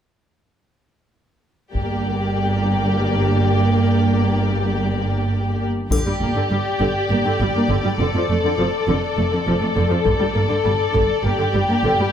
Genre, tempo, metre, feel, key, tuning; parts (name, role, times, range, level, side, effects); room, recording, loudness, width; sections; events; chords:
cinematic, epic orchestral film score; 202 BPM (eighths); 7/8; straight; G minor; A4 = 440 Hz
warm symphonic violin section; melody; 1.7-12.1 s; D5; -29 LUFS; left 4 dB
warm symphonic violin section; second line; 1.7-12.1 s; G4 to A4; -23 LUFS; left 3 dB
warm symphonic viola section; accompaniment; 1.7-12.1 s; D3 to Bb3; -23 LUFS; right 1 dB
dark symphonic cello section; bass; 1.7-12.0 s; F2 to G2; -22 LUFS; right 2 dB
warm symphonic double bass section; bass; 1.7-11.9 s; F1 to G1; -24 LUFS; right 2 dB
taiko ensemble; drums; 1.7-11.2 s; -25 LUFS; left 1 dB
triangle; percussion; 5.9-7.1 s; -34 LUFS; left 1 dB
moderate scoring stage reverb, RT60 1.9 s; -17 LUFS; side -9 dB against mid
1.7-5.9 A section; 5.9-12.1 B section
build-up 5.9-12.1
1.7 Gm; 5.9 G5; 8.0 Dm/F; 10.1 G5